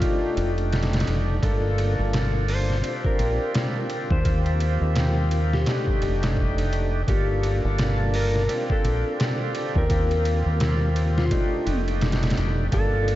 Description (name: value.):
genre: trip hop.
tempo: 85 BPM.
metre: 4/4.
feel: swing 59% on 16ths.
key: unclear.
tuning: A4 = 440 Hz.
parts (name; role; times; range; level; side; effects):
clean lap steel guitar; melody; 0.0-13.2 s; F4 to C5; -29 LUFS; left 1 dB; vintage 12-bit sampler grit, dub echo.
bright tonewheel organ; accompaniment; 0.0-13.2 s; A3 to A4; -28 LUFS; equal; overdrive, slow rotary speaker, harmonic tremolo, low-pass filter, tape echo.
trip hop sampler-style drum kit; drums; 0.0-13.2 s; hi-hat, kick drum, ride cymbal, snare drum; -26 LUFS; equal; none.
deep dub fingered electric bass; bass; 0.4-13.2 s; F1 to Eb2; -23 LUFS; equal; none.
room: moderate cathedral reverb, RT60 5.3 s.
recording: dreamy mix soaked in reverb, vinyl crackle, nothing above 7.7 kHz.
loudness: -21 LUFS.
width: side -15 dB against mid.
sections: 0.0-13.2 A section.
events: none.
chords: 0.0 F13; 1.4 Gm9; 2.8 Bb69; 4.3 Eb69; 5.7 F13; 7.1 Gm9; 8.5 Bb69; 9.9 Eb69; 11.3 F13.